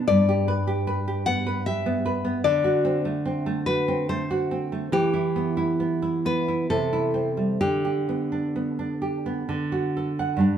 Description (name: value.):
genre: romantic duo for nylon-string guitar and classical guitar.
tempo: 62-77 BPM.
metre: 3/4.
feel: rubato.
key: G major.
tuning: A4 = 441 Hz.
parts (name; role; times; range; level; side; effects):
nylon-string guitar; accompaniment; 0.0-10.6 s; G2 to F#5; -24 LUFS; right 2 dB; none.
nylon-string guitar; melody; 0.1-9.4 s; G4 to F#5; -26 LUFS; left 4 dB; none.
room: moderate recital hall reverb, RT60 1.3 s.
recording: dark, warm production.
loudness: -22 LUFS.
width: side -9 dB against mid.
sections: 0.0-10.4 A section.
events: none.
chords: 0.1 G; 2.4 D7; 4.9 Em; 6.7 C; 7.6 G/D; 9.5 D.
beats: | 0.07 0.85 1.65 | 2.44 3.25 4.09 | 4.92 5.80 6.70 | 7.60 8.54 9.47 | 10.41.